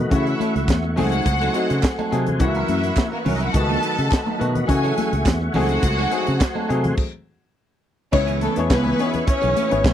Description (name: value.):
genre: disco.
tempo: 105 BPM.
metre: 4/4.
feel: straight.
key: C# minor.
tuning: A4 = 438 Hz.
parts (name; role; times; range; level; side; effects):
clear baby grand piano; accompaniment; 0.0-9.9 s; D#3 to C#5; -25 LUFS; left 5 dB; none.
electric guitar at the edge of break-up; accompaniment; 0.0-9.9 s; E3 to B#4; -28 LUFS; right 8 dB; phaser.
tonewheel organ; sustained chords; 0.0-9.9 s; A3 to C#6; -29 LUFS; right 1 dB; overdrive, chorus vibrato, slow rotary speaker.
fingered electric bass; bass; 0.0-9.9 s; G#1 to C#3; -22 LUFS; equal; none.
rich studio string section; second line; 0.1-9.9 s; A3 to A5; -25 LUFS; left 1 dB; none.
tight funk drum kit; drums; 0.1-9.9 s; crash cymbal, hi-hat, kick drum, snare drum; -21 LUFS; equal; none.
congas; percussion; 0.4-9.9 s; none; -28 LUFS; left 4 dB; none.
group handclap; percussion; 0.7-9.9 s; none; -32 LUFS; right 16 dB; none.
room: little or no reverb.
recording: dry, close 1970s-style studio recording.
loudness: -18 LUFS.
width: side -10 dB against mid.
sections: 0.0-8.1 A section; 8.1-9.9 B section.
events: stop 7.0-8.1.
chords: 0.1 F#m7/C#; 1.0 G#7b9/C#; 2.4 F#7/C#; 3.5 B7/C#; 4.7 F#m7/C#; 5.5 G#7b9/C#; 7.0 N.C.; 8.1 C#m7.